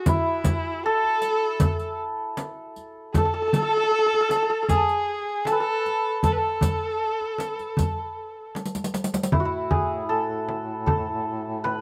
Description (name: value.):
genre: Persian modal ensemble.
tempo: 78 BPM.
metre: 4/4.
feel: straight.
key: unclear.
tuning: A4 = 438 Hz.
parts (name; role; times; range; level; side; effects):
santur; melody; 0.0-11.8 s; E4 to B4; -28 LUFS; equal; none.
rich kamancheh; second line; 0.0-8.6 s; E4 to B4; -29 LUFS; equal; none.
frame drum; percussion; 0.1-11.8 s; none; -29 LUFS; equal; none.
riq; percussion; 0.1-9.3 s; none; -32 LUFS; equal; none.
tombak; percussion; 0.1-11.8 s; none; -30 LUFS; equal; none.
mellow duduk; drone; 9.3-11.8 s; A2; -36 LUFS; equal; none.
room: moderate studio reverb, RT60 0.5 s.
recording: none.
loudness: -24 LUFS.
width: mono.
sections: 0.0-9.3 A section; 9.3-11.8 B section.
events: drum fill 8.6-9.3.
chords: none.